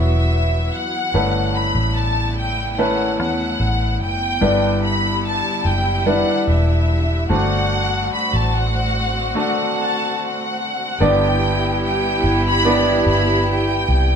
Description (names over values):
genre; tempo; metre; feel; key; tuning
pop ballad; 73 BPM; 4/4; straight; G major from 11.0 s; A4 = 440 Hz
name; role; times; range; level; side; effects
warm studio violin section; melody; 0.0-14.2 s; E5 to B5; -22 LUFS; left 1 dB; none
clear baby grand piano; accompaniment; 0.0-14.2 s; G2 to D5; -21 LUFS; equal; none
clear studio string section; sustained chords; 0.0-14.2 s; C#3 to G4; -27 LUFS; equal; none
vintage muted fingered electric bass; bass; 0.0-14.2 s; E1 to E2; -20 LUFS; equal; none
warm symphonic cello section; second line; 11.0-14.2 s; E4; -22 LUFS; right 1 dB; none
room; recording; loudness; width
wet studio reverb, RT60 0.7 s; band playing live in one room; -16 LUFS; side -7 dB against mid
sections
0.0-11.0 A section; 11.0-14.2 B section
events
break 9.4-11.0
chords
0.0 Esus2; 1.1 Aadd9/G; 4.4 G6; 7.3 D7/G; 11.0 G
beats
0.31 | 1.14 1.96 2.78 3.60 | 4.42 5.25 6.07 6.89 | 7.71 8.53 9.36 10.18 | 11.00 11.82 12.64 13.46